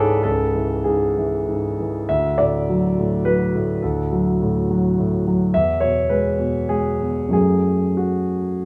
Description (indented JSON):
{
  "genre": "neoclassical minimalist piano",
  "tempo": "91-107 BPM",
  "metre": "3/4",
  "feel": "rubato",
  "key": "unclear",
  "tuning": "A4 = 439 Hz",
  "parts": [
    { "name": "dark concert grand piano", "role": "solo", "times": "0.0-8.7 s", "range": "C#2 to E5", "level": "-20 LUFS", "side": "equal", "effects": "none" }
  ],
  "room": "wet stone room reverb, RT60 1.3 s",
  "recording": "band playing live in one room",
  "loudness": "-20 LUFS",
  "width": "mono",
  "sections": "0.0-8.7 A section",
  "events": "none",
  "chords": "0.0 C#m; 2.1 D; 5.5 E; 7.3 F#m"
}